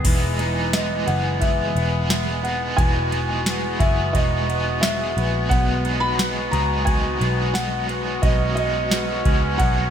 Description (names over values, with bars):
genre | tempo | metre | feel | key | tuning
dream pop | 88 BPM | 4/4 | straight | unclear | A4 = 440 Hz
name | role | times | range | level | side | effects
overdriven electric guitar | accompaniment | 0.0-9.9 s | B2 to G#4 | -28 LUFS | right 3 dB | tremolo, analog chorus
clear woodwind section | sustained chords | 0.0-9.9 s | E3 to F#4 | -27 LUFS | right 1 dB | none
electric guitar through a small old amp | arpeggios | 0.0-9.9 s | B2 to G#4 | -28 LUFS | left 4 dB | wide subtle chorus, digital delay
vintage muted picked electric bass | bass | 0.0-9.9 s | E1 to C#2 | -24 LUFS | equal | none
booming analog drum machine | drums | 0.0-9.8 s | crash cymbal, kick drum, ride cymbal, snare drum, tambourine | -22 LUFS | equal | gated reverb
felt-muted upright piano | melody | 0.7-9.9 s | D#5 to B5 | -26 LUFS | equal | digital delay
room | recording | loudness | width
moderate lush hall reverb, RT60 2.4 s | bright 1980s-style digital production | -18 LUFS | side -9 dB against mid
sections
0.1-9.9 A section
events
none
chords
0.1 Emaj7; 5.5 B6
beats
| 0.05 0.74 1.42 2.10 | 2.78 3.46 4.14 4.83 | 5.51 6.19 6.87 7.55 | 8.24 8.92 9.60